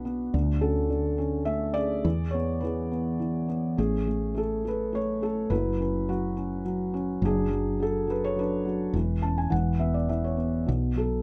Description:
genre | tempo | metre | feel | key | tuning
acoustic folk-pop ballad | 105 BPM | 3/4 | straight | unclear | A4 = 439 Hz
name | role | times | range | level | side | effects
felt-muted upright piano | melody | 0.0-11.2 s | B2 to A5 | -29 LUFS | equal | none
woody fretless electric bass | bass | 0.0-11.2 s | E1 to E2 | -32 LUFS | equal | none
room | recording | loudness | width
little or no reverb | close, detailed microphones | -28 LUFS | mono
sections
0.0-10.7 A section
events
felt piano fill 8.9-10.7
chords
0.3 Dmaj7; 2.0 E; 3.8 Amaj7; 5.5 F#5; 8.9 E6; 10.7 B5

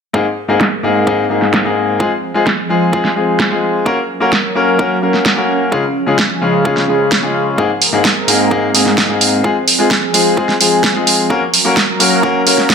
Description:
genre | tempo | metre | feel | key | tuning
EDM, festival progressive house | 129 BPM | 4/4 | straight | unclear | A4 = 440 Hz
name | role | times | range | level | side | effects
clear grand piano | accompaniment | 0.1-12.7 s | Ab2 to Bb4 | -14 LUFS | left 3 dB | sidechain pumping, ping-pong delay
lush unison pad | sustained chords | 0.5-12.7 s | F3 to Bb4 | -19 LUFS | right 2 dB | chorus, phaser, sidechain pumping
electronic kick drum | drums | 0.1-12.7 s | none | -22 LUFS | right 2 dB | high-pass filter on kick
pop drum kit | drums | 0.6-12.7 s | hi-hat, snare drum | -13 LUFS | right 2 dB | low-pass filter on snare, low-pass filter on hats
room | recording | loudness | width
moderate digital room reverb, RT60 1.1 s, digital ambience | none | -11 LUFS | side -6 dB against mid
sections
0.1-12.7 A section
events
filter sweep on drum 0.1-12.7; filter sweep on analog synth pad 0.1-12.7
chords
0.1 Abadd9; 2.0 Fm; 3.9 Gb; 5.7 Db; 7.6 Abadd9; 9.4 Fm; 11.3 Gb

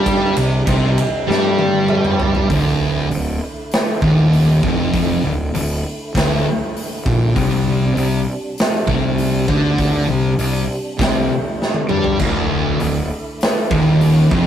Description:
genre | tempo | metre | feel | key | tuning
stoner and doom metal | 99 BPM | 4/4 | straight | D minor | A4 = 438 Hz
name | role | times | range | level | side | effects
percussive tonewheel organ | sustained chords | 0.0-14.5 s | C3 to E4 | -29 LUFS | right 2 dB | none
raw garage guitar | riff | 0.0-2.5, 12.2-14.5 s | D2 to G3 | -23 LUFS | equal | overdrive
thick fuzz guitar | riff | 0.0-14.5 s | D2 to G3 | -19 LUFS | left 5 dB | distortion
thick fuzz guitar | riff | 0.0-14.5 s | D2 to G3 | -20 LUFS | right 5 dB | distortion
fuzz fingered electric bass | bass | 0.0-14.5 s | D1 to G2 | -21 LUFS | equal | overdrive
big rock drum kit | drums | 0.1-14.5 s | crash cymbal, hi-hat, kick drum, ride cymbal, snare drum, toms | -20 LUFS | equal | none
room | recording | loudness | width
moderate studio reverb, RT60 0.6 s | rough rehearsal-room recording, tube saturation | -15 LUFS | side -10 dB against mid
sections
0.0-2.5 A section; 2.5-14.5 B section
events
drum fill 1.3-2.5, 11.6-12.2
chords
0.0 C5; 2.5 Dm; 7.4 C5; 12.2 Dm

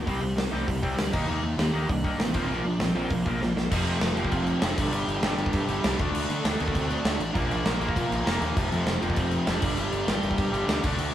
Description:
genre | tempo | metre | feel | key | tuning
punk rock | 198 BPM | 4/4 | straight | G minor | A4 = 440 Hz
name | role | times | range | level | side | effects
dark smooth lead guitar | melody | 0.0-10.8 s | G3 to G5 | -33 LUFS | right 2 dB | overdrive
cranked stack guitar | riff | 0.0-11.1 s | F2 to Eb4 | -28 LUFS | equal | overdrive
fuzz picked electric bass | bass | 0.0-11.1 s | F1 to D3 | -31 LUFS | equal | overdrive
big rock drum kit | drums | 0.1-11.1 s | crash cymbal, hi-hat, kick drum, snare drum | -28 LUFS | equal | none
room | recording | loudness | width
light reverb | band playing live in one room, vinyl crackle | -24 LUFS | side -11 dB against mid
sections
0.0-3.7 A section; 3.7-11.1 B section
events
drum fill 3.4-3.7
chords
0.1 C5; 1.1 Eb; 2.4 Bb; 3.7 F; 4.8 G5; 6.0 D5; 7.4 Bb; 8.6 F; 9.6 G5

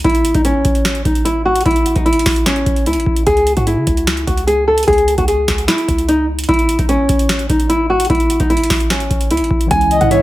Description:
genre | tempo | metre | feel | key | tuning
hip hop, trap | 149 BPM | 4/4 | half-time | unclear | A4 = 439 Hz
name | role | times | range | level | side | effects
nylon-string guitar | melody | 0.0-10.2 s | C#4 to G#5 | -14 LUFS | equal | digital delay
warm 808-style bass | bass | 0.0-10.2 s | A1 to C#3 | -20 LUFS | equal | none
booming analog drum machine | drums | 0.0-10.2 s | hi-hat, kick drum, snare drum | -18 LUFS | equal | none
mellow tine electric piano | accompaniment | 9.7-10.2 s | E3 to E4 | -18 LUFS | right 2 dB | medium stereo tremolo
dark analog pad | sustained chords | 9.9-10.2 s | C#3 to E4 | -20 LUFS | right 5 dB | chorus
breathy flute-like synth lead | second line | 9.9-10.2 s | C#5 to D#5 | -14 LUFS | left 2 dB | chorus
room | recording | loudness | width
light reverb | none | -12 LUFS | side -16 dB against mid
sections
0.0-9.7 A section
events
none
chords
0.0 A; 3.3 C#m; 6.5 A; 9.7 C#m

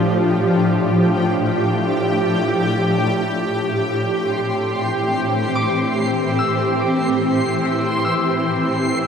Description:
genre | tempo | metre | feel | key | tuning
ambient | free time | none | none | A minor | A4 = 440 Hz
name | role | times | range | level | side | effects
shimmering ambient pad | sustained chords | 0.0-9.1 s | A2 to G4 | -17 LUFS | equal | chorus, built-in reverb, shimmer reverb
backwards swelling texture | texture | 4.3-9.1 s | C6 | -28 LUFS | equal | built-in reverb, shimmer reverb
concert harp | arpeggios | 5.6-9.1 s | D6 to E6 | -25 LUFS | left 3 dB | diffuse ambient delay, shimmer reverb
room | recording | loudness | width
wet huge ambient reverb, RT60 7.9 s | none | -16 LUFS | side -7 dB against mid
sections
0.0-3.4 A section; 3.4-9.1 B section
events
filter sweep on ambient pad 0.0-3.4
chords
0.0 F69/A; 3.4 Am7

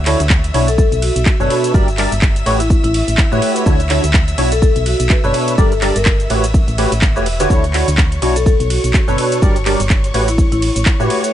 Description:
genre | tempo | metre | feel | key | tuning
piano house | 125 BPM | 4/4 | swing 58% on 16ths | unclear | A4 = 440 Hz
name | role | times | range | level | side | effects
warm studio violin section | sustained chords | 0.0-11.3 s | C#5 to E6 | -26 LUFS | left 1 dB | sidechain pumping
solid FM bass | bass | 0.0-11.1 s | E1 to A2 | -18 LUFS | equal | sidechain pumping
percussive organ stab | riff | 0.1-11.3 s | B2 to D5 | -18 LUFS | equal | ensemble chorus, sidechain pumping
house drum kit | drums | 0.1-11.3 s | cabasa, handclaps, hi-hat, ride cymbal | -21 LUFS | right 1 dB | studio reverb
electronic kick drum | drums | 0.3-11.0 s | none | -13 LUFS | equal | studio reverb
marimba with medium hard mallets | melody | 0.7-11.2 s | E4 to B4 | -22 LUFS | left 2 dB | dub echo
room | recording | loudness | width
little or no reverb | nothing above 10.6 kHz | -12 LUFS | side -11 dB against mid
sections
0.0-11.3 A section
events
none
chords
0.0 Dmaj9; 0.8 Bm9; 1.7 Gm; 2.5 A13; 3.7 Dmaj9; 4.6 Bm9; 5.6 Gm; 6.3 A13; 7.5 Dmaj9; 8.5 Bm9; 9.4 Gm; 10.1 A13

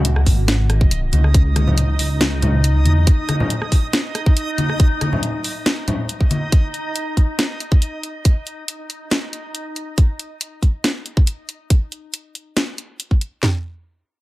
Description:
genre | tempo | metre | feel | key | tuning
deep dubstep | 139 BPM | 4/4 | half-time | unclear | A4 = 440 Hz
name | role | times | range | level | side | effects
dark detuned saw bass | bass | 0.0-3.1 s | G#1 to E2 | -16 LUFS | equal | tube saturation
garage drum kit | drums | 0.0-13.3 s | hi-hat, rim click, snare drum | -21 LUFS | equal | none
backwards swelling texture | texture | 0.8-10.0 s | D#4 to D#5 | -28 LUFS | right 1 dB | built-in reverb
garage drum kit | drums | 0.3-13.5 s | handclaps, kick drum, snare drum, toms | -14 LUFS | equal | none
congas | percussion | 1.1-6.4 s | none | -22 LUFS | left 1 dB | none
room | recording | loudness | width
digital ambience | none | -16 LUFS | side -18 dB against mid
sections
0.0-13.4 A section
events
none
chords
0.0 C#sus2; 6.5 N.C.

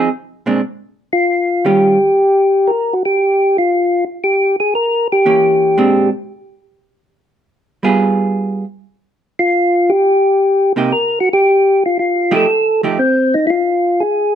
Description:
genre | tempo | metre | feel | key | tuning
jazz | 116 BPM | 4/4 | swing 69% on 8ths | unclear | A4 = 440 Hz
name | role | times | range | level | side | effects
vintage hollow-body jazz guitar | accompaniment | 0.0-2.0, 5.3-13.0 s | Bb2 to Ab4 | -15 LUFS | right 3 dB | none
percussive tonewheel organ | melody | 1.1-6.1, 9.4-14.3 s | C4 to Bb4 | -12 LUFS | left 1 dB | slow rotary speaker, plate reverb
room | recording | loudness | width
light reverb | none | -12 LUFS | side -9 dB against mid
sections
0.0-14.3 A section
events
none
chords
0.0 Fm7; 0.6 N.C.; 1.6 Eb9; 3.7 Edim7; 5.8 Bb9; 7.8 G7b9; 9.9 Cm7; 12.0 F9

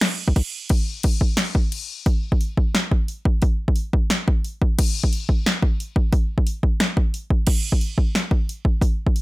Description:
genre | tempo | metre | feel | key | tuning
metal | 178 BPM | 4/4 | straight | none | none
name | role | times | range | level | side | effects
punchy analog drum machine | drums | 0.0-9.2 s | crash cymbal, hi-hat, kick drum, snare drum | -19 LUFS | equal | none
room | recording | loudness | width
little or no reverb | none | -19 LUFS | side -20 dB against mid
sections
0.7-2.1 A section; 2.1-9.2 B section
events
break 0.5, 1.7-2.1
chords
none

